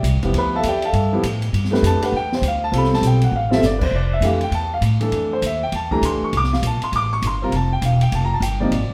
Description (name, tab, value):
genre	modal jazz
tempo	200 BPM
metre	4/4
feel	swing 63% on 8ths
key	G mixolydian, F major from 3.9 s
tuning	A4 = 440 Hz
part	clear concert grand piano	accompaniment	0.0-8.9 s	C3 to D6	-23 LUFS	equal	none
part	upright bass	bass	0.0-8.9 s	E1 to A2	-22 LUFS	equal	none
part	open jazz drum kit	drums	0.0-8.8 s	crash cymbal, hi-hat, kick drum, ride cymbal, snare drum	-30 LUFS	equal	none
room	wet studio reverb, RT60 0.9 s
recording	heard from further back in the room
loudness	-19 LUFS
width	mono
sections	0.0-3.9 A section; 3.9-8.9 A section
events	drum fill 3.3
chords	0.0 G13sus4; 3.9 Fmaj9